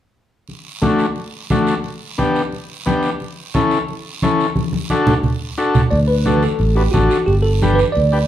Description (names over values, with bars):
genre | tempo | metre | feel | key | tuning
latin, cumbia | 177 BPM | 4/4 | straight | D major | A4 = 440 Hz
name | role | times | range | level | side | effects
congas | percussion | 0.5-8.1 s | none | -20 LUFS | equal | none
guiro | percussion | 0.5-8.3 s | none | -33 LUFS | right 5 dB | none
overdriven combo organ | accompaniment | 0.8-8.2 s | A3 to B4 | -19 LUFS | left 2 dB | none
bell-like tine electric piano | melody | 5.9-8.3 s | F#4 to D5 | -18 LUFS | right 3 dB | phaser
fingered electric bass | bass | 5.9-8.2 s | G1 to D2 | -16 LUFS | equal | none
room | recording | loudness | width
wet large studio reverb, RT60 0.9 s | band playing live in one room | -15 LUFS | side -11 dB against mid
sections
0.5-5.9 A section; 5.9-8.3 B section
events
drum fill 4.6-5.9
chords
0.5 D; 1.8 G; 3.2 A; 4.6 D; 7.3 G